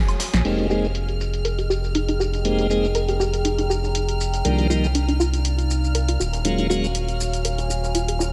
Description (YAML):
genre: deep house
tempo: 120 BPM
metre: 4/4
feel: swing 55% on 16ths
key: F minor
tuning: A4 = 438 Hz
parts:
  - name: clear symphonic violin section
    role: texture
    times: 0.0-8.3 s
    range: Eb6 to F6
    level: -38 LUFS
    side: equal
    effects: none
  - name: warbly tape-like pad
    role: texture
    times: 0.0-8.3 s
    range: Eb4 to Bb5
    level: -32 LUFS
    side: equal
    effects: chorus, built-in reverb
  - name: punchy analog drum machine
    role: drums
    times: 0.1-8.3 s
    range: crash cymbal, hi-hat, shaker, snare drum, woodblock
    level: -31 LUFS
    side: equal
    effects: low-pass filter on hats, low-pass filter on perc, low-pass filter on snare, low-pass filter on cymbals, low-pass filter on room
  - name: crunchy breakbeat drum kit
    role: drums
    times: 0.2-8.3 s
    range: hi-hat, snare drum, tambourine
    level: -44 LUFS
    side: equal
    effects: none
  - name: round analog bass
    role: bass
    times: 0.3-8.3 s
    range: Eb1 to C2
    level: -26 LUFS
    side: equal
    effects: tube saturation
  - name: soft round pluck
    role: arpeggios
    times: 0.4-8.3 s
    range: D4 to Bb4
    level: -29 LUFS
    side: equal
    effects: chorus, cassette tape, delay
  - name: tonewheel organ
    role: stabs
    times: 0.4-6.9 s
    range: Eb3 to Ab4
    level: -27 LUFS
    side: equal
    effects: overdrive, slow rotary speaker, low-pass filter, delay
room: light reverb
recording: none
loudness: -22 LUFS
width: mono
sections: 0.4-8.3 A section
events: drum fill 0.0-0.4; filter sweep on tonewheel organ 0.4-8.3; filter sweep on synth arpeggio sound 0.4-8.3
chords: 0.4 Fm11; 4.4 Cm11; 6.2 Ebm11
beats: | 0.45 0.95 1.45 1.95 | 2.45 2.95 3.45 3.95 | 4.45 4.95 5.45 5.95 | 6.45 6.95 7.45 7.95